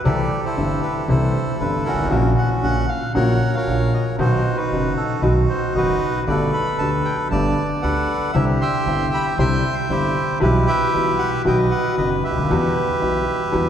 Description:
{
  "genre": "tango",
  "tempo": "116 BPM",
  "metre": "4/4",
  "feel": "rubato",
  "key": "unclear",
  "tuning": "A4 = 440 Hz",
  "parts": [
    { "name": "bandoneon", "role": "melody", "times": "0.0-13.7 s", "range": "C#4 to C6", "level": "-22 LUFS", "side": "right 1 dB", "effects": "none" },
    { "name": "warm grand piano", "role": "accompaniment", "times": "0.0-13.7 s", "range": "F#1 to G4", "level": "-21 LUFS", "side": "left 1 dB", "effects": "none" },
    { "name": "upright bass", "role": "bass", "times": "0.1-13.7 s", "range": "F#1 to E2", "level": "-24 LUFS", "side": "right 1 dB", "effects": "none" }
  ],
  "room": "wet cathedral reverb, RT60 4.6 s",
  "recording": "recorded in a church or concert hall",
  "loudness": "-17 LUFS",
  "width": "side -9 dB against mid",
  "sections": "0.0-13.7 A section",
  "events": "none",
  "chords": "0.0 C6; 2.1 F#/A#; 4.2 B; 6.3 Gadd9; 8.3 Cadd9; 10.4 Em/B; 11.5 B; 12.5 Emadd9"
}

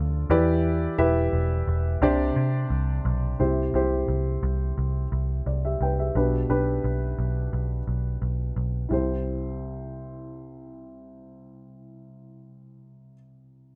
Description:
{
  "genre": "piano-driven pop",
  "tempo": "87 BPM",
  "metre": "4/4",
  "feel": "straight",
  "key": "C major",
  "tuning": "A4 = 439 Hz",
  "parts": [
    { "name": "dark upright piano", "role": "accompaniment", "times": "0.0-13.8 s", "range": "C2 to G5", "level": "-29 LUFS", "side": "equal", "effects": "none" },
    { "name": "vintage muted picked electric bass", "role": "bass", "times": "0.0-13.1 s", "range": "E1 to C3", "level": "-28 LUFS", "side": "equal", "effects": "none" }
  ],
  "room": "moderate studio ambience, RT60 0.4 s",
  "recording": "none",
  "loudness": "-25 LUFS",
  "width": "mono",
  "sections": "0.0-3.4 A section; 3.4-8.9 B section; 8.9-11.7 C section",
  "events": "none",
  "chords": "0.3 Em7; 2.0 Csus2; 3.4 C; 6.2 G/B; 8.9 C"
}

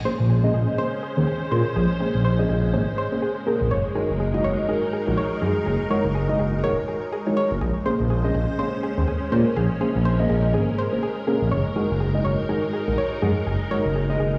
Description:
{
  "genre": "deep house",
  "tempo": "123 BPM",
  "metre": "4/4",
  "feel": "swing 59% on 16ths",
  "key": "Bb minor",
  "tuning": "A4 = 440 Hz",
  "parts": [
    { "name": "soft string machine", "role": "sustained chords", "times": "0.0-14.4 s", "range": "Ab3 to C5", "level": "-32 LUFS", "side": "equal", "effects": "phaser, ensemble chorus" },
    { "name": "soft round pluck", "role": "arpeggios", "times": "0.1-14.3 s", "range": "Ab4 to Db5", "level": "-32 LUFS", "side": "equal", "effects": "chorus, tape echo" },
    { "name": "deep mellow chord stab", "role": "stabs", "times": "0.1-14.4 s", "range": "Ab3 to Eb5", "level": "-27 LUFS", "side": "equal", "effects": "chorus, digital delay" },
    { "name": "smooth synth bass", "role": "bass", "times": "0.2-14.4 s", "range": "Eb1 to Bb2", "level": "-24 LUFS", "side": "equal", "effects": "none" }
  ],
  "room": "light reverb",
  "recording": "played on a big sound system in a bare room, large studio reverb, studio reverb",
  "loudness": "-23 LUFS",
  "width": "mono",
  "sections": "0.0-14.4 A section",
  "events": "none",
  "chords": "0.0 Bbm9; 3.7 Gb69; 7.6 Bbm9; 11.5 Gb69"
}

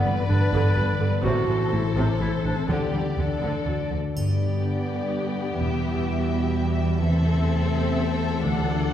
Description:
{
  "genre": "cinematic, heroic adventure film score",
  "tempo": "125 BPM",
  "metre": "3/4",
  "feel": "straight",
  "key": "G major",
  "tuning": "A4 = 440 Hz",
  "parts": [
    { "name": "dark symphonic violin section", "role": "melody", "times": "0.0-8.9 s", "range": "C5 to F#5", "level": "-33 LUFS", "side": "left 4 dB", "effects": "none" },
    { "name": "rich chamber violin section", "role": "second line", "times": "0.0-8.9 s", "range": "G4 to B4", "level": "-32 LUFS", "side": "left 3 dB", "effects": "none" },
    { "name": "warm clarinet", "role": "second line", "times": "0.0-3.7 s", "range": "B3 to F#4", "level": "-29 LUFS", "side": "right 1 dB", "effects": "none" },
    { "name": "warm symphonic viola section", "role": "accompaniment", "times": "0.0-8.9 s", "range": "C3 to D4", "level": "-32 LUFS", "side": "right 1 dB", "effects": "none" },
    { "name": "concert harp", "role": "arpeggios", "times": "0.0-8.9 s", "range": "G2 to A5", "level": "-29 LUFS", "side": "left 6 dB", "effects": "none" },
    { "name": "warm studio double bass section", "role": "bass", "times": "0.0-6.0, 8.4-8.9 s", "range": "E1 to D2", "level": "-26 LUFS", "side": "right 1 dB", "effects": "none" },
    { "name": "rich symphonic cello section", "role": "bass", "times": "0.1-8.9 s", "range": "D2 to D3", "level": "-27 LUFS", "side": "right 2 dB", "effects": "none" },
    { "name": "mellow trombone section", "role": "sustained chords", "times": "4.2-8.9 s", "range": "B2 to B3", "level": "-31 LUFS", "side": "right 2 dB", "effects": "none" },
    { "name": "triangle and cymbal swell", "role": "percussion", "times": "4.2-8.9 s", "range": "none", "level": "-41 LUFS", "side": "left 2 dB", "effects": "none" }
  ],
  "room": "wet scoring stage reverb, RT60 1.6 s",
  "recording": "heard from further back in the room",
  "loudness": "-21 LUFS",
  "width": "side -10 dB against mid",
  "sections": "0.0-4.2 A section; 4.2-8.9 B section",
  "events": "none",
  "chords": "0.0 G; 1.2 Am; 2.7 G/D; 3.2 D; 4.2 G; 5.6 Em; 7.0 Am/E"
}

